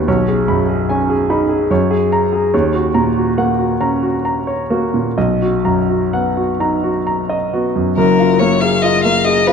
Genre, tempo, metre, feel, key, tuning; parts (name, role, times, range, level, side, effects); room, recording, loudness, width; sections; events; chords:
classical, impressionist duo for violin and grand piano; 63-75 BPM; 3/4; rubato; F# major; A4 = 438 Hz
clear grand piano; accompaniment; 0.0-9.5 s; F#1 to B5; -14 LUFS; equal
clear violin; melody; 8.0-9.5 s; A#4 to E#5; -14 LUFS; left 6 dB
moderate scoring stage reverb, RT60 1.8 s; dark, warm production; -13 LUFS; side -6 dB against mid
0.0-8.0 A section; 8.0-9.5 B section
0.1 B69; 1.7 F#add9; 2.5 D#m7; 5.2 Bmaj7; 8.0 F#maj9